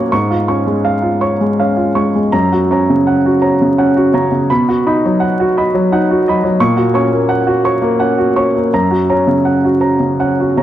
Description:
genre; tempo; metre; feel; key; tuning
neoclassical minimalist piano; 77-90 BPM; 3/4; rubato; F# major; A4 = 439 Hz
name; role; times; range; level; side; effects
clear baby grand piano; solo; 0.0-10.6 s; F#2 to C#6; -11 LUFS; equal; none
room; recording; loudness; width
wet recital hall reverb, RT60 1.4 s; dark, warm production, vinyl crackle; -11 LUFS; side -12 dB against mid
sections
0.0-10.6 A section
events
none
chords
0.1 C#/G#; 2.3 F#; 4.5 B; 6.6 F#/A#; 8.7 F#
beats
| 0.11 0.84 1.59 | 2.33 3.05 3.77 | 4.50 5.21 5.91 | 6.59 7.26 7.97 | 8.71 9.46 10.21

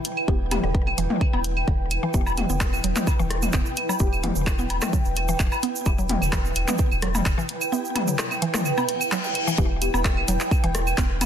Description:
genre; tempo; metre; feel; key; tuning
minimal techno; 129 BPM; 4/4; straight; E minor; A4 = 440 Hz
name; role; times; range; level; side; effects
punchy analog drum machine; drums; 0.0-11.3 s; handclaps, hi-hat; -30 LUFS; equal; overdrive
granular cloud pad; texture; 0.0-11.3 s; E4 to G5; -30 LUFS; right 2 dB; built-in reverb, sidechain pumping
organic electronic drum kit; percussion; 0.2-11.3 s; claves, rim click, toms, woodblock; -27 LUFS; left 1 dB; soft clipping on snare, digital delay
mallet-like synth pluck; riff; 0.3-11.0 s; D3 to B3; -30 LUFS; right 1 dB; chorus, sidechain pumping, ping-pong delay
filtered dub chord stab; stabs; 0.3-9.9 s; B3 to G4; -34 LUFS; left 4 dB; phaser, ensemble chorus, digital delay
round analog bass; bass; 0.3-11.3 s; E1; -27 LUFS; equal; sidechain pumping
electronic kick drum; drums; 0.3-11.1 s; none; -23 LUFS; equal; none
egg shaker; percussion; 2.1-11.3 s; none; -34 LUFS; right 6 dB; none
reverse cymbal and zap; sound effects; 8.9-9.6 s; none; -31 LUFS; left 4 dB; none
room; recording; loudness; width
light reverb; dense, heavily limited modern master, lossy compression artefacts; -21 LUFS; side -9 dB against mid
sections
0.0-9.6 A section; 9.6-11.3 B section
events
reverse cymbal 8.9-9.6; drop 9.6-11.3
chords
0.0 Em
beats
| 0.28 0.75 1.21 1.68 | 2.14 2.61 3.07 3.54 | 4.00 4.47 4.93 5.40 | 5.86 6.33 6.79 7.26 | 7.72 8.19 8.65 9.12 | 9.58 10.05 10.51 10.98

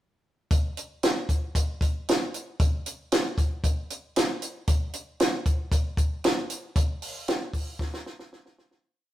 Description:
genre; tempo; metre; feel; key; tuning
funk; 115 BPM; 4/4; straight; none; none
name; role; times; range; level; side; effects
compact cocktail drum kit; drums; 0.5-8.8 s; hi-hat, kick drum, snare drum; -24 LUFS; equal; none
room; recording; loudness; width
moderate stone room reverb, RT60 0.9 s; rough rehearsal-room recording; -25 LUFS; side -14 dB against mid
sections
0.5-8.8 breakdown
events
fade-out 6.8-8.8; drum fill 7.8-8.8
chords
none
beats
| 0.51 1.03 1.55 2.08 | 2.60 3.12 3.64 4.16 | 4.68 5.20 5.72 6.24 | 6.76 7.28 7.80 8.31

